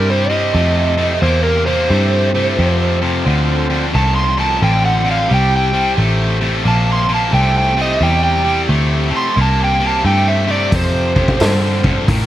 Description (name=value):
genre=blues rock power trio and southern rock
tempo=88 BPM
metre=4/4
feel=swing 65% on 8ths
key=C mixolydian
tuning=A4 = 440 Hz
part: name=overdriven slide guitar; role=melody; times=0.0-12.1 s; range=Bb4 to C6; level=-17 LUFS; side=right 2 dB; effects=slapback echo
part: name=bright tonewheel organ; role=sustained chords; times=0.0-12.0 s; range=C4 to Bb5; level=-26 LUFS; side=right 2 dB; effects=overdrive, lush chorus
part: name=tight distorted guitar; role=riff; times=0.0-12.3 s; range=F2 to Bb3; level=-18 LUFS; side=left 2 dB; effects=distortion
part: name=vintage muted picked electric bass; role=bass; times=0.0-12.3 s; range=A1 to A2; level=-16 LUFS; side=equal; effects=none
part: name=vintage drum kit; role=drums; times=10.7-12.3 s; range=hi-hat, kick drum, snare drum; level=-16 LUFS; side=equal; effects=none
room=light reverb, small room reverb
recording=vinyl crackle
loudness=-12 LUFS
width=side -13 dB against mid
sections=0.0-12.3 A section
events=none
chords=0.0 C; 2.6 F; 5.3 C; 10.7 F